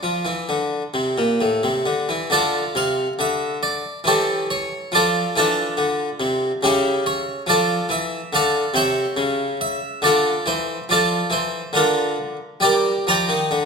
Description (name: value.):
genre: classical, baroque-style suite movement for harpsichord.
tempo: 70 BPM.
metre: 3/4.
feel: rubato.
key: D minor.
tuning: A4 = 440 Hz.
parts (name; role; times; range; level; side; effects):
harpsichord; solo; 0.0-13.7 s; A2 to Bb5; -18 LUFS; equal; none.
room: wet recital hall reverb, RT60 1.5 s.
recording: minimal, uncompressed stereo recording.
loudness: -18 LUFS.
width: side -5 dB against mid.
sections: 0.0-2.3 A section; 2.3-13.7 B section.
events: none.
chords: 0.0 Dm; 4.0 A7/E; 4.9 Dm; 6.6 C#dim; 7.5 Dm; 9.2 C#dim; 10.0 Dm; 11.7 Bb/D; 12.6 Gm.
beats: 0.49 1.40 | 2.30 3.18 4.04 | 4.90 5.76 6.62 | 7.46 8.31 9.16 | 10.02 10.88 11.74 | 12.61 13.49.